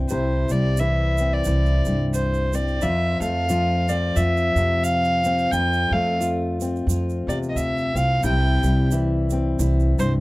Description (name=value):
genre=acoustic folk duo or small band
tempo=88 BPM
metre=4/4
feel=swing 58% on 8ths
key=C major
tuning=A4 = 440 Hz
part: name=fingerpicked steel-string acoustic guitar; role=accompaniment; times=0.0-10.2 s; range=F2 to F4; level=-24 LUFS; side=left 2 dB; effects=none
part: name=upright bass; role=bass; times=0.0-10.2 s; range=C2 to F2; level=-22 LUFS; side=equal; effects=none
part: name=warm fiddle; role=melody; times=0.1-10.1 s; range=C5 to G5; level=-24 LUFS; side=equal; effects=none
part: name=egg shaker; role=percussion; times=0.1-10.1 s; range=none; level=-37 LUFS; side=right 12 dB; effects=none
room=little or no reverb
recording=dry, close 1970s-style studio recording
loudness=-19 LUFS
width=side -20 dB against mid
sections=0.0-10.2 A section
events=fiddle solo 0.0-10.2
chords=0.0 C; 2.8 F; 8.2 C